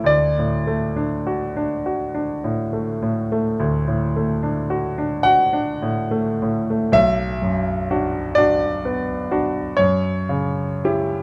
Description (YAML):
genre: classical, romantic nocturne for solo piano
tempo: 33-44 BPM (dotted quarters)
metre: 12/8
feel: rubato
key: D major, B minor from 6.9 s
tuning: A4 = 445 Hz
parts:
  - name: clear grand piano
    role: solo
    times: 0.0-11.2 s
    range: B1 to F#5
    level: -21 LUFS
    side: equal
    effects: none
room: light reverb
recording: close, detailed microphones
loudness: -21 LUFS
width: mono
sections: 0.0-6.9 A section; 6.9-11.2 B section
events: none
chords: 0.1 D; 6.9 Bm; 9.8 F#7(no3)